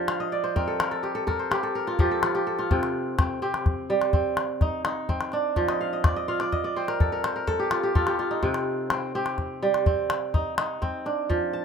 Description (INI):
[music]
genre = west african traditional, West African string and xylophone music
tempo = 84 BPM (dotted quarters)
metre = 12/8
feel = straight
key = C dorian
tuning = A4 = 443 Hz
[part]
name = kora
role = arpeggios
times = 0.0-11.6 s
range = C3 to A5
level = -25 LUFS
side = right 1 dB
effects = none
[part]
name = calabash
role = percussion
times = 0.1-11.4 s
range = none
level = -26 LUFS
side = left 2 dB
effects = none
[sound]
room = little or no reverb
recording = rough home demo mix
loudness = -23 LUFS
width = side -6 dB against mid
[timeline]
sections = 0.0-2.7 A section; 2.7-11.6 B section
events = kora fill 0.1-2.7, 5.7-8.4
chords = 0.0 F; 2.7 Cm; 5.6 F; 8.4 Cm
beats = 0.56 1.28 1.99 | 2.71 3.42 4.14 4.85 | 5.57 6.29 7.00 7.72 | 8.43 9.15 9.87 10.58 | 11.30